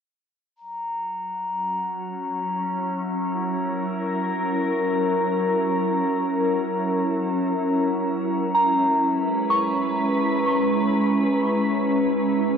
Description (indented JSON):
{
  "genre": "ambient",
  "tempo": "free time",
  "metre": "none",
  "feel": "none",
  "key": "F# mixolydian",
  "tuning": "A4 = 439 Hz",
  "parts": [
    { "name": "glassy FM pad", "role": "sustained chords", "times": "1.6-12.6 s", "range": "F#3 to B4", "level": "-22 LUFS", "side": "equal", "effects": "ensemble chorus, built-in reverb" },
    { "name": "glass harmonica", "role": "texture", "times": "0.6-12.6 s", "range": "A#5", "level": "-29 LUFS", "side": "left 2 dB", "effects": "none" },
    { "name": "soft synth bell", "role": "arpeggios", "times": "8.5-12.6 s", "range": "A#5 to C#6", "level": "-24 LUFS", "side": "equal", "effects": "chorus, phaser, tape echo" }
  ],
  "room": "wet huge ambient reverb, RT60 9.3 s",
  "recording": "worn, warbling old tape, cassette tape, warbly pitch drift",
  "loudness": "-21 LUFS",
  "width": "side -7 dB against mid",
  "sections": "0.6-12.6 A section",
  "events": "fade-out on glass harmonica 0.6-12.6",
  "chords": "0.6 F#7; 8.3 C#m7",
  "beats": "free time"
}